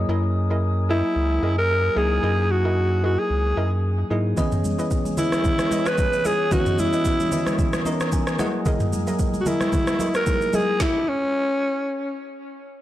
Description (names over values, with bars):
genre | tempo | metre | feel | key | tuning
amapiano | 112 BPM | 4/4 | swing 55% on 16ths | unclear | A4 = 440 Hz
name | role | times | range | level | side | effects
bell-like tine electric piano | accompaniment | 0.0-10.8 s | E3 to A#5 | -28 LUFS | left 1 dB | none
breathy mellow small flute group | sustained chords | 0.0-10.8 s | A#4 to D#6 | -34 LUFS | equal | none
soft round pluck | stabs | 0.0-10.6 s | F#3 to D#5 | -31 LUFS | right 1 dB | chorus, tape echo
saturated sub bass | bass | 0.0-4.3 s | C#2 to G#2 | -22 LUFS | equal | none
breathy alto saxophone | melody | 0.9-12.1 s | C#4 to B4 | -23 LUFS | equal | tape echo
smooth R&B drum kit | drums | 4.4-10.9 s | kick drum, rim click, shaker, snare drum, toms | -24 LUFS | equal | none
congas | percussion | 4.4-10.7 s | none | -30 LUFS | right 1 dB | none
room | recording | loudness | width
little or no reverb | dry, gritty hardware recording, transformer saturation | -19 LUFS | side -13 dB against mid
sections
0.0-12.8 A section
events
tine electric piano fill 7.6-8.7; stop 10.8-12.8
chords
0.0 F#13; 4.4 C#m9; 8.4 F#13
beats
| 0.09 0.62 1.16 1.70 | 2.23 2.77 3.30 3.84 | 4.37 4.91 5.45 5.98 | 6.52 7.05 7.59 8.12 | 8.66 9.20 9.73 10.27 | 10.80 11.34 11.87